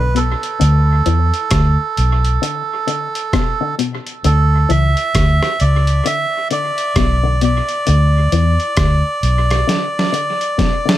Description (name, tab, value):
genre	roots reggae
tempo	66 BPM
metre	4/4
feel	swing 61% on 16ths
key	unclear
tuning	A4 = 440 Hz
part	melodica	melody	0.0-11.0 s	A4 to E5	-19 LUFS	right 2 dB	dub echo
part	electric guitar with an envelope filter	arpeggios	0.0-11.0 s	B2 to E3	-22 LUFS	left 8 dB	spring reverb
part	vintage muted fingered electric bass	bass	0.0-9.6 s	B1 to E2	-13 LUFS	equal	none
part	dusty soul sampler-style drum kit	drums	0.2-11.0 s	hi-hat, kick drum, rim click, snare drum	-20 LUFS	equal	overdrive, dub echo
room	light reverb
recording	none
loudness	-13 LUFS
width	side -13 dB against mid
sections	0.0-11.0 A section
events	drum fill 9.7-11.0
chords	0.0 Bm7; 0.6 D5; 2.4 Bm; 4.2 Aadd11/C#; 6.1 Bmadd11; 9.7 Bm